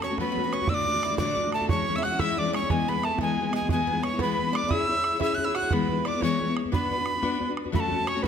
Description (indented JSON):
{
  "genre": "celtic folk, Celtic jig",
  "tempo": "119 BPM (dotted quarters)",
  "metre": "6/8",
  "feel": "straight",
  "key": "unclear",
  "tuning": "A4 = 441 Hz",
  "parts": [
    { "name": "breathy bright mid whistle", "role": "melody", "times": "0.0-8.3 s", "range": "G#5 to F#6", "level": "-28 LUFS", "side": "right 1 dB", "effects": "none" },
    { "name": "Irish bouzouki", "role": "second line", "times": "0.0-8.3 s", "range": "G#3 to F#4", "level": "-35 LUFS", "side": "right 8 dB", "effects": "none" },
    { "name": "warm fiddle", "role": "second line", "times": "0.0-8.3 s", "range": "G#4 to F#5", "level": "-34 LUFS", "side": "left 2 dB", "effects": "none" },
    { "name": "fingerpicked steel-string acoustic guitar", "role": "accompaniment", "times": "0.0-8.3 s", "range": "D2 to C#5", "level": "-28 LUFS", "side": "left 5 dB", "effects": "none" },
    { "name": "bodhran", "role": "percussion", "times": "0.0-8.3 s", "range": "none", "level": "-32 LUFS", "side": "right 4 dB", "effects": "none" }
  ],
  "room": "wet recital hall reverb, RT60 1.3 s",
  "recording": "none",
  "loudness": "-23 LUFS",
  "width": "side -8 dB against mid",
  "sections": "0.0-7.7 A section",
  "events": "none",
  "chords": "0.0 F#m; 0.7 D; 1.7 C#m/E; 2.7 E; 4.7 C#m; 5.7 E; 6.7 Bm; 7.7 F#m"
}